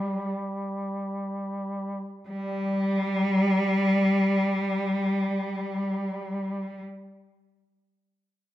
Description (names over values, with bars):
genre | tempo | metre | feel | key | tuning
caucasian folk, Caucasian lament | free time | none | none | unclear | A4 = 440 Hz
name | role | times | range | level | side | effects
rich cello | melody | 0.0-6.8 s | G3 | -25 LUFS | equal | none
mellow duduk | drone | 0.0-6.8 s | G3 | -32 LUFS | equal | none
room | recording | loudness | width
moderate recital hall reverb, RT60 1.5 s | minimal, uncompressed stereo recording | -25 LUFS | side -13 dB against mid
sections
0.0-2.3 A section; 2.3-8.5 B section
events
none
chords
none